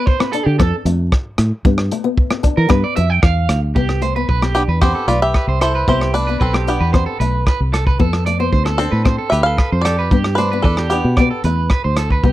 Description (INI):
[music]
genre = highlife guitar band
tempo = 113 BPM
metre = 4/4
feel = straight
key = C major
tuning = A4 = 440 Hz
[part]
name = fingerpicked acoustic archtop guitar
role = accompaniment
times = 0.0-12.3 s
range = A3 to D4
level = -22 LUFS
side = left 7 dB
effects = none
[part]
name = electric guitar at the edge of break-up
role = arpeggios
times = 0.0-12.3 s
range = G4 to G5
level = -22 LUFS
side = right 5 dB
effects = harmonic tremolo, slapback echo
[part]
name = crunchy breakbeat drum kit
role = drums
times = 0.1-12.3 s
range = hi-hat, kick drum, rim click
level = -17 LUFS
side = equal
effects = none
[part]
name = fingered electric bass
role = bass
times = 0.5-12.3 s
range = B1 to E3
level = -17 LUFS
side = equal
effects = none
[part]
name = bluegrass banjo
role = melody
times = 4.5-11.4 s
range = B3 to F5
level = -19 LUFS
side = equal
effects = none
[sound]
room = little or no reverb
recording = dry, close 1970s-style studio recording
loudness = -14 LUFS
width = side -15 dB against mid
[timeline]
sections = 0.0-3.8 A section; 3.8-12.3 B section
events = clean electric guitar solo 0.0-3.8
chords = 0.0 F; 1.7 G; 3.8 Cmaj7; 8.0 F; 10.1 G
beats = 0.07 0.60 1.12 | 1.65 2.18 2.70 3.23 | 3.76 4.29 4.82 5.35 | 5.88 6.41 6.94 7.47 | 8.00 8.53 9.06 9.59 | 10.12 10.65 11.18 11.71 | 12.24